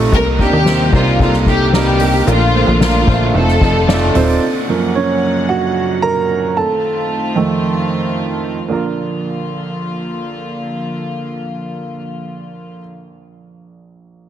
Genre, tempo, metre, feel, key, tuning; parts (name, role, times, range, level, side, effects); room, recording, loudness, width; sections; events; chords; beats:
piano-driven pop; 112 BPM; 4/4; straight; Bb major; A4 = 439 Hz
warm grand piano; accompaniment; 0.0-14.3 s; Bb1 to Bb5; -17 LUFS; right 4 dB
rich studio string section; sustained chords; 0.0-12.8 s; C3 to Gb5; -24 LUFS; left 1 dB
plucky analog bass; bass; 0.0-4.4 s; Eb1 to Eb2; -15 LUFS; left 1 dB
soft-mallet drum kit; drums; 0.0-4.4 s; hi-hat, kick drum, ride cymbal, snare drum; -19 LUFS; left 1 dB
rich studio violin section; melody; 0.1-4.1 s; F4 to Bb4; -18 LUFS; left 2 dB
mellow French horn section; second line; 0.4-4.3 s; G2 to D4; -24 LUFS; left 3 dB
moderate concert hall reverb, RT60 2.2 s; heavily compressed radio sound, multiband compression; -13 LUFS; side -10 dB against mid
0.0-4.4 A section; 4.4-8.7 B section; 8.7-13.0 C section
grand piano solo 4.4-8.7
0.1 Cm7; 2.3 Bbmaj7; 3.3 F7; 4.4 Gbmaj7; 6.6 F7; 8.7 Bb
| 0.13 0.66 1.20 1.73 | 2.27 2.81 3.34 3.88 | 4.42 4.95 5.49 6.02 | 6.56 7.10 7.63 8.17 | 8.71 9.24 9.78 10.32 | 10.86 11.39 11.93 12.47